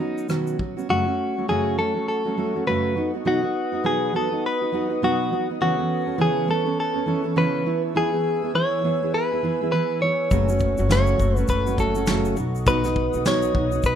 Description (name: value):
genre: acoustic pop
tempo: 102 BPM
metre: 4/4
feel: swing 60% on 16ths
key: unclear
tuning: A4 = 440 Hz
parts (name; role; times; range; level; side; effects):
- direct-recorded clean electric guitar; melody; 0.0-14.0 s; D#4 to C#5; -24 LUFS; left 1 dB; none
- fingerpicked steel-string acoustic guitar; accompaniment; 0.0-14.0 s; F#2 to A4; -24 LUFS; right 2 dB; none
- soft brush drum kit; drums; 0.2-0.9, 10.3-14.0 s; kick drum, rim click, shaker, snare drum; -26 LUFS; left 1 dB; none
- glassy FM pad; sustained chords; 1.4-14.0 s; C#4 to E6; -33 LUFS; equal; ensemble chorus, built-in reverb
- upright bass; bass; 10.3-14.0 s; F#1 to B1; -24 LUFS; left 1 dB; none
room: light reverb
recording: minimal, uncompressed stereo recording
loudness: -20 LUFS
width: side -9 dB against mid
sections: 0.9-14.0 A section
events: none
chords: 0.0 Badd9; 0.9 F#m; 3.0 B; 5.6 Aadd9/C#; 7.7 E; 10.3 F#m; 12.4 B